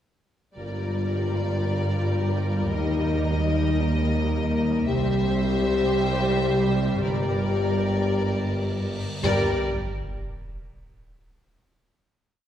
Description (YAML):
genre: cinematic, epic orchestral film score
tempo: 56 BPM (dotted quarters)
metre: 6/8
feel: straight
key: G minor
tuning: A4 = 439 Hz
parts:
  - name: rich studio violin section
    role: melody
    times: 0.6-9.7 s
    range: D5 to E5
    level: -34 LUFS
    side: left 3 dB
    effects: none
  - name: rich symphonic violin section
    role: second line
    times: 0.6-9.7 s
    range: Bb4 to C5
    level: -34 LUFS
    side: equal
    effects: none
  - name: warm symphonic viola section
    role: accompaniment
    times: 0.6-9.7 s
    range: G3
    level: -32 LUFS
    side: right 1 dB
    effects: none
  - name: mellow French horn section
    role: sustained chords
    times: 0.6-9.6 s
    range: Bb3 to G4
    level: -28 LUFS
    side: left 4 dB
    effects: none
  - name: warm symphonic cello section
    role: bass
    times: 0.6-9.7 s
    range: C2 to G2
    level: -29 LUFS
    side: right 1 dB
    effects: none
  - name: warm symphonic double bass section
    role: bass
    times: 0.6-9.7 s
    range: G1 to Eb2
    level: -29 LUFS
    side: right 2 dB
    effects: none
  - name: warm tuba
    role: bass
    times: 0.6-9.6 s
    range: G1 to Eb2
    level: -30 LUFS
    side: right 1 dB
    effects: none
  - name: cymbal swell and sub drop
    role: sound effects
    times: 8.3-11.5 s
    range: none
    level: -36 LUFS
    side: equal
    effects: none
room: wet scoring stage reverb, RT60 1.7 s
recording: heard from further back in the room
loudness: -22 LUFS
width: side -10 dB against mid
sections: 0.6-9.2 theme; 9.2-11.5 final chord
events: cymbal swell 8.3-9.2; impact 9.2-11.5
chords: 0.6 Gm; 2.7 Eb; 4.9 C; 7.0 Gm; 9.2 N.C.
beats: | 0.58 1.65 | 2.72 3.79 | 4.87 5.95 | 7.03 8.13 | 9.24 10.37